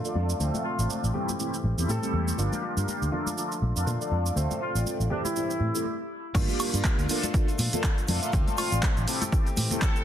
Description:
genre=filtered disco house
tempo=121 BPM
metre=4/4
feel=swing 57% on 16ths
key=G dorian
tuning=A4 = 445 Hz
part: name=mellow synth brass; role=accompaniment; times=0.0-9.9 s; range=G3 to F5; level=-31 LUFS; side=equal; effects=chorus, phaser, sidechain pumping, low-pass filter
part: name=direct-recorded clean electric guitar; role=riff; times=0.0-10.0 s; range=E3 to G4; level=-36 LUFS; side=left 2 dB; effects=sidechain pumping, low-pass filter
part: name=punchy analog drum machine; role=drums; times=0.0-10.0 s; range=cabasa, crash cymbal, handclaps, hi-hat, woodblock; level=-32 LUFS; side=right 2 dB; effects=overdrive, sidechain pumping on perc, sidechain pumping on hats, sidechain pumping on cymbals
part: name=tube shaker and congas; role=percussion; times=0.0-10.0 s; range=none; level=-37 LUFS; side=left 2 dB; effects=sidechain pumping on perc, low-pass filter on perc
part: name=fingered electric bass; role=bass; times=0.2-9.7 s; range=G1 to Bb2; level=-27 LUFS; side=equal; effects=sidechain pumping, low-pass filter
part: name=warm horn section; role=melody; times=0.6-10.0 s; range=D4 to A4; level=-35 LUFS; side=equal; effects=sidechain pumping, low-pass filter, dub echo
part: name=electronic kick drum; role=drums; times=6.3-9.9 s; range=none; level=-25 LUFS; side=equal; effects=overdrive
room=light reverb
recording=dense, heavily limited modern master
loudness=-24 LUFS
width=side -10 dB against mid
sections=0.0-6.3 A section; 6.3-10.0 B section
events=filter sweep 0.0-6.3; break 5.9-6.3; drop 6.3-10.0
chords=0.4 Dm7; 1.1 Am7; 2.4 Gm7; 3.1 Bbmaj7; 4.4 Dm7; 5.1 Am7; 6.3 Gm7; 7.1 Bbmaj7; 8.3 Dm7; 9.1 Am7

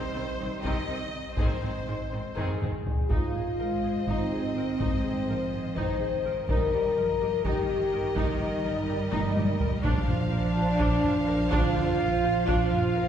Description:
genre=cinematic, epic orchestral film score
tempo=249 BPM (eighths)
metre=7/8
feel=straight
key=unclear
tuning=A4 = 440 Hz
part: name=rich symphonic violin section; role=melody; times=0.0-13.1 s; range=C5 to F5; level=-39 LUFS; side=left 3 dB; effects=none
part: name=mellow French horn section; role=sustained chords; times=0.0-13.1 s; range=G3 to C5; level=-29 LUFS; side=left 1 dB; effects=none
part: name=warm studio violin section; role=second line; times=0.1-13.1 s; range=G3 to C5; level=-38 LUFS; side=right 1 dB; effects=none
part: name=rich symphonic double bass section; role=bass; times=0.1-13.0 s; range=G1 to C2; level=-34 LUFS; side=right 1 dB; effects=none
part: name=rich symphonic viola section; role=accompaniment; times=0.2-13.0 s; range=Eb3 to Bb4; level=-36 LUFS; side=right 1 dB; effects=none
part: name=rich symphonic cello section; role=bass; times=0.2-13.1 s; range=Ab2 to C4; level=-33 LUFS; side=right 2 dB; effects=none
part: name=taiko ensemble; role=drums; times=0.6-12.9 s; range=none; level=-31 LUFS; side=equal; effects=none
part: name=timpani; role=percussion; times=9.8-10.5 s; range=Bb2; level=-37 LUFS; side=right 1 dB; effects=none
room=wet concert hall reverb, RT60 1.9 s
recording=heard from further back in the room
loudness=-25 LUFS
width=side -9 dB against mid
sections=0.0-3.1 A section; 3.1-13.1 B section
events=drum fill 2.4-3.1, 9.1-9.8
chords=0.0 Cm; 1.4 Ab; 6.5 Eb/G; 9.8 Bbadd9

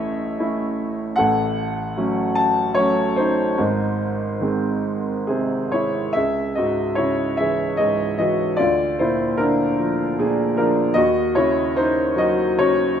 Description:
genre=classical, lyrical solo piano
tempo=75 BPM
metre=3/4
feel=rubato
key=unclear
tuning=A4 = 440 Hz
part: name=warm concert grand piano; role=solo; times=0.0-13.0 s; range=G#1 to A5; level=-18 LUFS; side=equal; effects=none
room=light reverb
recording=minimal, uncompressed stereo recording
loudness=-18 LUFS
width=side -8 dB against mid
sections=0.0-6.1 A section; 6.1-13.0 B section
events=none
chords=0.0 A; 1.2 F#m/A; 3.6 G#; 6.1 C#m; 8.6 A#/D; 10.9 D#m7

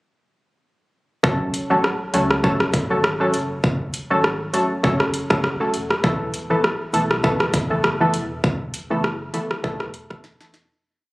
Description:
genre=dancehall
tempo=100 BPM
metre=4/4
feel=swing 56% on 16ths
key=F# minor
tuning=A4 = 440 Hz
part: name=punchy chord stab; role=accompaniment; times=1.2-10.6 s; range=E3 to A4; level=-21 LUFS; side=equal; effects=chorus, sidechain pumping
part: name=sub bass with octave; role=bass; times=1.2-10.7 s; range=E1 to C#2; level=-30 LUFS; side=equal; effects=none
part: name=island pop drum kit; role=drums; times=1.2-10.7 s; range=hi-hat, kick drum, rim click, snare drum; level=-22 LUFS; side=equal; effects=overdrive
room=moderate lush hall reverb, RT60 2.5 s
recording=recorded on a phone in the room, club reverb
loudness=-18 LUFS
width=side -21 dB against mid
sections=1.2-10.8 verse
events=fade-out 8.4-10.8; drum fill 10.2-10.8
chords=1.2 F#m; 6.0 Esus4

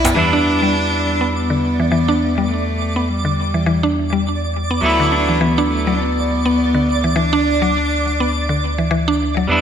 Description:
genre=organic downtempo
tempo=103 BPM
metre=4/4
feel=swing 58% on 16ths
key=E minor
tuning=A4 = 439 Hz
part: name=warm cello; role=melody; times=0.0-8.9 s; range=G3 to E4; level=-20 LUFS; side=left 1 dB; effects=digital delay
part: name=mallet-like synth pluck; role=arpeggios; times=0.0-9.4 s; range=D3 to D4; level=-19 LUFS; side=equal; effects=chorus, digital delay
part: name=round analog bass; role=bass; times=0.0-9.6 s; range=B1 to E2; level=-22 LUFS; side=equal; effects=none
part: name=electronic hi-hat and shaker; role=drums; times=0.0-9.6 s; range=none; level=-24 LUFS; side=left 6 dB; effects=low-pass filter on hats, low-pass filter on perc, low-pass filter on snare
part: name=twinkling granular texture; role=texture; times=0.0-9.6 s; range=D5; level=-24 LUFS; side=right 2 dB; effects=built-in reverb, analog chorus
part: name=clean electric guitar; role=accompaniment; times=0.1-9.6 s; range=F#3 to E4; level=-21 LUFS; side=right 2 dB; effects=digital delay
room=moderate plate reverb, RT60 1.7 s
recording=bright 1980s-style digital production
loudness=-15 LUFS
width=side -8 dB against mid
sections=0.2-9.6 A section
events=none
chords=0.2 Em7; 4.8 D6

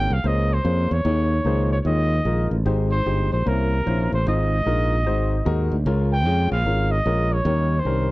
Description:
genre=gospel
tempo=150 BPM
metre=4/4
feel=swing 66% on 8ths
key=Ab major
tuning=A4 = 440 Hz
part: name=warm trumpet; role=melody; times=0.0-8.1 s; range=Bb4 to G5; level=-25 LUFS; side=right 1 dB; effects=slapback echo
part: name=warm concert grand piano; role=accompaniment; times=0.0-8.1 s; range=Ab2 to Db5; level=-26 LUFS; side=left 3 dB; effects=none
part: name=modern bright fingered electric bass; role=bass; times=0.0-8.1 s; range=G1 to F2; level=-21 LUFS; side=equal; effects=none
room=little or no reverb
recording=dry, close 1970s-style studio recording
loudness=-19 LUFS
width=side -19 dB against mid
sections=0.0-8.1 A section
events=none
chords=0.0 Bbm9; 1.1 Eb7sus4; 1.9 Eb9sus4; 2.7 Abmaj7; 3.5 C7b9; 4.3 Fm7/Ab; 5.1 Ab7; 5.9 Db6; 7.5 Eb7

